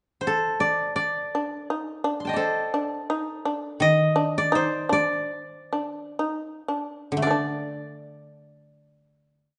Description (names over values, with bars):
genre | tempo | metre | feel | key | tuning
japanese traditional, Japanese chamber music | 53-85 BPM | 2/4 | rubato | D in sen | A4 = 440 Hz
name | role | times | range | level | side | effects
koto | melody | 0.2-9.6 s | A4 to C6 | -26 LUFS | equal | none
shamisen | second line | 1.3-9.6 s | D3 to Eb4 | -29 LUFS | equal | none
koto | accompaniment | 3.8-9.6 s | D3 to D4 | -30 LUFS | equal | none
room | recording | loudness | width
moderate recital hall reverb, RT60 1.4 s | nothing above 10.3 kHz | -26 LUFS | mono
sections
0.0-1.0 pickup bar; 1.0-7.2 A section; 7.2-9.6 final chord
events
slowing down 3.8-7.2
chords
none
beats
0.26 | 0.98 1.70 | 2.40 3.11 | 3.82 4.54 | 5.31 6.20 | 7.23 8.34 | 9.44